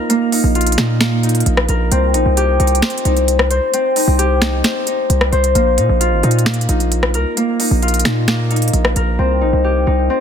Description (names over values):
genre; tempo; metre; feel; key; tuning
hip hop, trap; 132 BPM; 4/4; half-time; C minor; A4 = 440 Hz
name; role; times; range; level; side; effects
Celtic harp; arpeggios; 0.0-10.2 s; Bb3 to C5; -16 LUFS; left 2 dB; tape echo
trap drum kit; drums; 0.1-9.1 s; finger snaps, hi-hat, rim click, snare drum; -19 LUFS; right 1 dB; overdrive, soft clipping on snare
hard-hitting 808-style bass; bass; 0.4-10.1 s; Ab1 to Bb2; -16 LUFS; right 1 dB; none
room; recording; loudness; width
little or no reverb; dense, heavily limited modern master; -13 LUFS; side -8 dB against mid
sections
0.0-9.2 A section; 9.2-10.2 B section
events
none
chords
0.0 Bbsus4; 1.9 Cm; 5.6 Bbsus4; 9.2 Cm